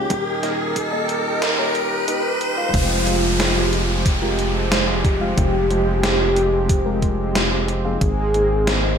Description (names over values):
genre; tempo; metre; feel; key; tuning
synthwave; 91 BPM; 4/4; straight; F minor; A4 = 439 Hz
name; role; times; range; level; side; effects
brassy analog pad; sustained chords; 0.0-9.0 s; Eb3 to Bb4; -26 LUFS; right 2 dB; chorus, tremolo, sidechain pumping
mellow FM electric piano; stabs; 0.0-9.0 s; Ab3 to G5; -26 LUFS; left 3 dB; chorus, phaser, ping-pong delay
tight sequencer bass; bass; 0.0-9.0 s; Eb1 to Ab1; -24 LUFS; equal; sidechain pumping
riser and downlifter; sound effects; 0.0-8.0 s; none; -24 LUFS; equal; none
electronic kick drum; drums; 0.1-8.1 s; none; -20 LUFS; equal; none
gated 80s digital drum machine; drums; 0.1-8.8 s; crash cymbal, hi-hat, snare drum; -23 LUFS; equal; gated reverb, gated reverb snare, high-pass filter on hats, high-pass filter on snare, high-pass filter on cymbals, high-pass filter on room
warm velvety synth lead; melody; 2.7-9.0 s; F4 to Ab4; -23 LUFS; equal; chorus, tape echo
room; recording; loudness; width
light reverb, digital ambience; high-pass filter; -17 LUFS; side -7 dB against mid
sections
0.0-2.7 A section; 2.7-9.0 B section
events
riser 0.0-2.7; filter sweep 0.0-2.7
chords
0.1 Eb; 2.7 Fmadd9; 8.0 Abadd9